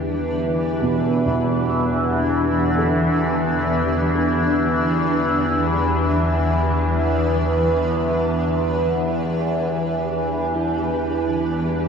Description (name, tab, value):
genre	ambient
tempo	free time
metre	none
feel	none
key	unclear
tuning	A4 = 438 Hz
part	granular cloud pad	sustained chords	0.0-11.9 s	E3 to B4	-25 LUFS	left 1 dB	built-in reverb, analog chorus
part	overtone-sweeping drone	drone	0.0-11.9 s	E2 to E3	-19 LUFS	equal	chorus, built-in reverb, phaser
part	dark grand piano	arpeggios	0.8-10.6 s	B2 to A4	-26 LUFS	right 2 dB	lush chorus, ping-pong delay
part	bronze singing bowl	texture	10.6-11.9 s	E4	-24 LUFS	right 4 dB	none
room	wet huge ambient reverb, RT60 7.5 s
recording	dreamy mix soaked in reverb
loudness	-18 LUFS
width	side -6 dB against mid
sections	0.0-10.6 A section; 10.6-11.9 B section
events	fade-out on ambient pad 0.0-10.6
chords	0.0 Em